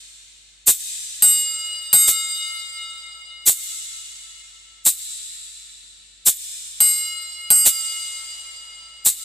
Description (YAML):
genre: trip hop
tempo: 86 BPM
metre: 4/4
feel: swing 56% on 16ths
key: none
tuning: none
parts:
  - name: egg shaker and triangle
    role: percussion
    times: 0.7-9.2 s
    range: none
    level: -14 LUFS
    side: equal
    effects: none
room: moderate huge ambient reverb, RT60 8.4 s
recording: dreamy mix soaked in reverb, faint mains hum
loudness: -13 LUFS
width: side -13 dB against mid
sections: 0.0-9.2 A section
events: none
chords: none